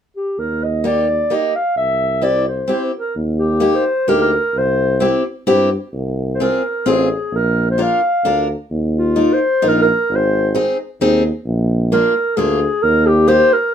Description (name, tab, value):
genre	alpine folk, alpine dance band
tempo	130 BPM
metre	3/4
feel	straight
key	Eb major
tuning	A4 = 440 Hz
part	dark clarinet	melody	0.2-13.7 s	F4 to F5	-16 LUFS	equal	none
part	warm tuba	bass	0.4-13.4 s	Ab1 to G2	-19 LUFS	right 1 dB	none
part	picked steel-string acoustic guitar	accompaniment	0.8-13.5 s	Bb3 to Bb4	-17 LUFS	left 1 dB	none
room	moderate studio reverb, RT60 0.6 s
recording	minimal, uncompressed stereo recording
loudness	-14 LUFS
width	side -8 dB against mid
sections	0.4-3.2 A section; 3.2-13.7 B section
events	none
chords	0.4 Eb; 1.8 C; 3.2 Eb; 4.5 C; 5.9 Fm/C; 7.3 Bb; 8.7 Ebsus2; 10.1 Ab; 11.5 Bb; 12.8 Eb